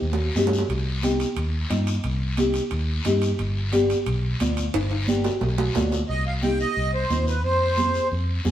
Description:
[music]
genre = latin, cumbia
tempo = 178 BPM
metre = 4/4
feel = straight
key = C harmonic minor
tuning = A4 = 441 Hz
[part]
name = vintage muted fingered electric bass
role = bass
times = 0.0-8.5 s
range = G1 to G2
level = -25 LUFS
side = equal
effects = none
[part]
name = congas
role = percussion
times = 0.0-8.5 s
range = none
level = -29 LUFS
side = right 4 dB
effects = none
[part]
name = guiro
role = percussion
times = 0.0-8.5 s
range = none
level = -35 LUFS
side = left 3 dB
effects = none
[part]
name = timbales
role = percussion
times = 0.1-6.0 s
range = none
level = -30 LUFS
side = right 3 dB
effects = none
[part]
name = nylon-string guitar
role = accompaniment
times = 0.4-8.5 s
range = B3 to Ab4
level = -26 LUFS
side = left 2 dB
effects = none
[part]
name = accordion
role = melody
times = 6.1-8.1 s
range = B4 to G5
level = -24 LUFS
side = right 1 dB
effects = light tremolo tuning
[sound]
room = wet stone room reverb, RT60 1.3 s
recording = band playing live in one room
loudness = -21 LUFS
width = side -11 dB against mid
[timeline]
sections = 0.0-6.1 A section; 6.1-8.5 B section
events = drum fill 0.0-0.7, 4.7-6.1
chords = 0.0 Cm; 3.4 G7; 6.1 Cm; 7.4 Fm

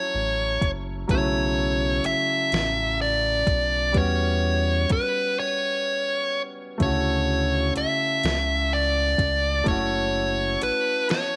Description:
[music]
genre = slow six-eight R&B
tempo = 42 BPM (dotted quarters)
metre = 6/8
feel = straight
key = E dorian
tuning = A4 = 440 Hz
[part]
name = dark smooth lead guitar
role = melody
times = 0.0-11.4 s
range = B4 to E5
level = -26 LUFS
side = equal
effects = overdrive, slapback echo
[part]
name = clear concert grand piano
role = accompaniment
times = 0.0-11.4 s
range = C#3 to F#4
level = -32 LUFS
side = equal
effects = none
[part]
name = round analog bass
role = bass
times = 0.1-10.7 s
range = F#1 to F#2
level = -30 LUFS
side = equal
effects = none
[part]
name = smooth R&B drum kit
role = drums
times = 0.6-11.3 s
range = hi-hat, kick drum, snare drum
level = -28 LUFS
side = equal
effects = none
[sound]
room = light reverb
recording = none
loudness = -23 LUFS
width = mono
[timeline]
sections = 0.0-11.4 A section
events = break 5.4-6.8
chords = 0.0 F#m7; 1.1 B9sus4; 3.9 Em69; 6.8 Dmaj7; 9.7 F#m7

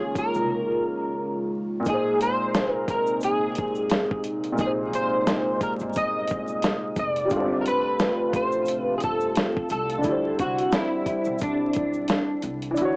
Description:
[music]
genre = lo-fi hip hop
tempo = 88 BPM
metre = 4/4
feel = swing 57% on 16ths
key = unclear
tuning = A4 = 441 Hz
[part]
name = electric guitar at the edge of break-up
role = melody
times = 0.0-12.4 s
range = D4 to Eb5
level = -26 LUFS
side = equal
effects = ensemble chorus, low-pass filter, cassette tape, tape echo
[part]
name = warm upright piano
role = accompaniment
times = 0.0-13.0 s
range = Bb2 to Db5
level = -28 LUFS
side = equal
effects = cassette tape, low-pass filter
[part]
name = dark analog pad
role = sustained chords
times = 0.0-12.7 s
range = C3 to F4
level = -30 LUFS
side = equal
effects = chorus, low-pass filter, cassette tape
[part]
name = dusty soul sampler-style drum kit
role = drums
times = 0.2-13.0 s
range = hi-hat, kick drum, snare drum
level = -26 LUFS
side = equal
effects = cassette tape
[part]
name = egg shaker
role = percussion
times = 0.2-12.9 s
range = none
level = -51 LUFS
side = right 1 dB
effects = none
[part]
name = upright bass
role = bass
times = 0.4-0.5, 4.6-13.0 s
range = F1 to D2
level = -36 LUFS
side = equal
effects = none
[sound]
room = light reverb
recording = home recording on cassette, vinyl crackle, small speaker sound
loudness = -22 LUFS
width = side -29 dB against mid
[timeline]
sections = 0.0-12.8 A section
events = drums muted 0.5-1.9; kick muted 12.8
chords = 0.0 Eb9sus4; 1.9 Bb9sus4; 7.3 G9sus4; 10.0 D9sus4

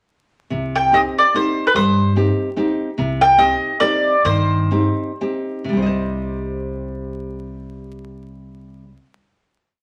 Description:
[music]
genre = italian folk, Italian serenade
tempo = 107-148 BPM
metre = 3/4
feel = swing 54% on 8ths, rubato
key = C minor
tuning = A4 = 445 Hz
[part]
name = nylon-string guitar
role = accompaniment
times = 0.5-9.1 s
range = C3 to Eb5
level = -24 LUFS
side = equal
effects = none
[part]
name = upright bass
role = bass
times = 0.5-8.9 s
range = C2 to G2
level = -26 LUFS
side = equal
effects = none
[part]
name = mandolin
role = melody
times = 0.8-5.2 s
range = B4 to G5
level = -18 LUFS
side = equal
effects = none
[sound]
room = moderate studio reverb, RT60 0.7 s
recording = vinyl crackle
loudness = -18 LUFS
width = mono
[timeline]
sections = 0.5-5.7 A section; 5.7-9.0 final chord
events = slowing down 3.0-5.7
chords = 0.5 Cm

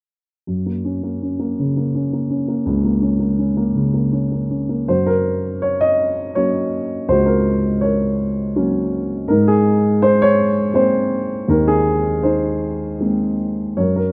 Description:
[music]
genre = classical, lyrical solo piano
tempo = 82 BPM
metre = 3/4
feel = rubato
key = Gb lydian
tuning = A4 = 441 Hz
[part]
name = dark baby grand piano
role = solo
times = 0.5-14.1 s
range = Db2 to Eb5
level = -18 LUFS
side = equal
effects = none
[sound]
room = light reverb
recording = close, detailed microphones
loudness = -18 LUFS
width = mono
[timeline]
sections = 0.5-4.9 A section; 4.9-14.1 B section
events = none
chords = 0.5 Gb; 9.3 Abadd9

